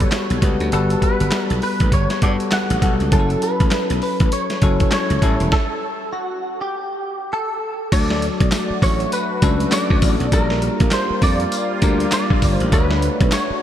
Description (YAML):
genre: R&B, new jack swing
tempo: 100 BPM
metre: 4/4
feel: swing 61% on 16ths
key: D major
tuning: A4 = 440 Hz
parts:
  - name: direct-recorded clean electric guitar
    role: melody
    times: 0.0-13.6 s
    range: F#4 to F#5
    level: -23 LUFS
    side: right 1 dB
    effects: ensemble chorus, diffuse ambient delay
  - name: bell-like tine electric piano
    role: accompaniment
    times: 0.0-13.6 s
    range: F#3 to C#5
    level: -23 LUFS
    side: left 4 dB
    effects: lush chorus
  - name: slap bass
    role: bass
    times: 0.0-13.5 s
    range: E1 to G2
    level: -20 LUFS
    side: equal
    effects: none
  - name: dusty soul sampler-style drum kit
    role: drums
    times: 0.0-13.5 s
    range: crash cymbal, handclaps, hi-hat, kick drum, snare drum, tambourine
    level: -20 LUFS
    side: equal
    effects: none
  - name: sweeping resonant pad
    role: sustained chords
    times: 7.9-13.6 s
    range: G3 to F#4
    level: -26 LUFS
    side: right 1 dB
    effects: chorus
room: moderate huge ambient reverb, RT60 3.8 s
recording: dreamy mix soaked in reverb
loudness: -16 LUFS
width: side -10 dB against mid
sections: 0.0-7.9 A section; 7.9-13.6 B section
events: stop 5.5-7.9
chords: 0.0 Gmaj9; 3.1 F#m7; 5.2 A7; 7.9 Dmaj7; 10.3 Bb6; 12.7 Dmaj7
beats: 0.12 | 0.72 1.32 1.92 2.52 | 3.12 3.72 4.32 4.92 | 5.52 6.12 6.72 7.32 | 7.92 8.52 9.12 9.72 | 10.32 10.92 11.52 12.12 | 12.72 13.32